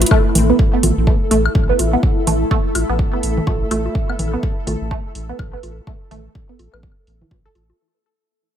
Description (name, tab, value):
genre	minimal techno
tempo	125 BPM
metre	4/4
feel	swing 60% on 16ths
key	unclear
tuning	A4 = 440 Hz
part	saturated sub bass	bass	0.0-7.7 s	A1	-20 LUFS	equal	tube saturation, sidechain pumping
part	electronic hi-hat	drums	0.0-7.7 s	none	-23 LUFS	right 2 dB	low-pass filter on hats, small room ambience, low-pass filter on cymbals, low-pass filter on snare
part	bongos, woodblock and congas	percussion	0.0-7.8 s	none	-24 LUFS	left 1 dB	overdrive, small room ambience, tape echo
part	granular cloud pad	texture	0.0-7.8 s	A3 to B5	-24 LUFS	left 1 dB	built-in reverb, sidechain pumping
part	pulsing gated texture	texture	0.0-7.8 s	A4 to B4	-30 LUFS	left 2 dB	chorus, built-in reverb, sidechain pumping
part	resonant blip pluck	riff	0.1-7.5 s	E3 to A4	-21 LUFS	right 2 dB	phaser, sidechain pumping, ping-pong delay
part	electronic kick drum	drums	0.1-7.4 s	none	-18 LUFS	equal	small room ambience
room	little or no reverb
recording	none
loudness	-15 LUFS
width	side -10 dB against mid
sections	0.1-7.8 A section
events	fade-out on ambient pad 0.1-7.8; fade-out 0.1-7.8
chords	0.1 A5